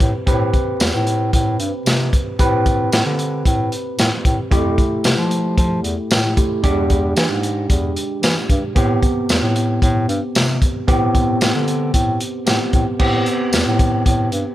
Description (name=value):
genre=straight-eighth soul blues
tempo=113 BPM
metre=4/4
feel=straight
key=A minor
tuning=A4 = 440 Hz
part: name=overdriven tine electric piano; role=accompaniment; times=0.0-14.5 s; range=G#3 to B4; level=-21 LUFS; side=right 1 dB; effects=lush chorus
part: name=breathy bass clarinet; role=bass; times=0.0-14.4 s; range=E2 to F3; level=-20 LUFS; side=equal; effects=none
part: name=crunchy breakbeat drum kit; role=drums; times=0.0-14.4 s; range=crash cymbal, hi-hat, kick drum, snare drum, tambourine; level=-18 LUFS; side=equal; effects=none
room=little or no reverb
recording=none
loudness=-15 LUFS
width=side -14 dB against mid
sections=0.0-13.0 A section; 13.0-14.5 B section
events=none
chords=0.0 Am7; 4.5 Fmaj7; 6.6 E7#9; 8.8 Am7